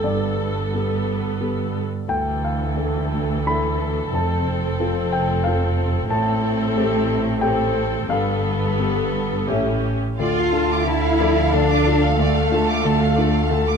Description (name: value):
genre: cinematic, emotional film score for orchestra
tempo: 83-92 BPM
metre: 3/4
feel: rubato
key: D minor from 10.2 s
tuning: A4 = 442 Hz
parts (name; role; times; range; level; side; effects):
- rich symphonic viola section; accompaniment; 0.0-13.8 s; E3 to A4; -26 LUFS; right 1 dB; none
- warm concert grand piano; accompaniment; 0.0-13.8 s; D2 to B5; -23 LUFS; left 4 dB; none
- warm symphonic cello section; bass; 0.0-13.8 s; D2 to F4; -24 LUFS; right 2 dB; none
- warm symphonic double bass section; bass; 0.0-13.8 s; F1 to D2; -24 LUFS; right 2 dB; none
- warm symphonic violin section; melody; 10.2-13.8 s; F5; -30 LUFS; left 3 dB; none
- warm symphonic violin section; second line; 10.2-13.8 s; D5 to D6; -26 LUFS; right 1 dB; none
room: light reverb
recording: close, detailed microphones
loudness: -18 LUFS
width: side -6 dB against mid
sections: 0.0-10.2 A section; 10.2-13.8 B section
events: none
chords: 0.0 Gadd9; 2.1 Dmadd9; 4.1 F; 6.1 Am7; 8.1 Gadd9; 9.5 A7; 10.2 Dm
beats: | 0.04 0.72 1.41 | 2.08 2.77 3.47 | 4.14 4.80 5.46 | 6.11 6.77 7.42 | 8.09 8.78 9.48 | 10.19 10.87 11.53 | 12.19 12.85 13.51